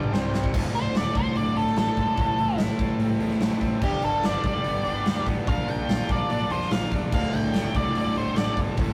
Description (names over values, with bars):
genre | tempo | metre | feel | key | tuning
classic rock | 146 BPM | 4/4 | straight | D minor | A4 = 443 Hz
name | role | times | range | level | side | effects
bright tonewheel organ | sustained chords | 0.0-8.9 s | C4 to D5 | -44 LUFS | equal | none
overdriven semi-hollow guitar | riff | 0.0-8.9 s | D2 to C4 | -31 LUFS | equal | none
tight distorted guitar | riff | 0.0-8.9 s | D2 to F4 | -36 LUFS | equal | distortion
fuzz fingered electric bass | bass | 0.0-8.9 s | D1 to Bb2 | -34 LUFS | equal | overdrive
huge arena drum kit | drums | 0.0-8.9 s | crash cymbal, hi-hat, kick drum, snare drum, toms | -29 LUFS | equal | none
octave-fuzz lead guitar | melody | 0.7-8.6 s | G4 to G5 | -30 LUFS | equal | distortion
room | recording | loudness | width
wet booth ambience, RT60 0.2 s | rough rehearsal-room recording | -25 LUFS | mono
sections
0.5-8.9 A section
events
drum fill 0.0-0.5; lead electric guitar solo 0.5-8.9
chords
0.1 C5; 0.5 Dm; 2.2 Am; 3.8 G; 5.5 Bb; 7.1 Dm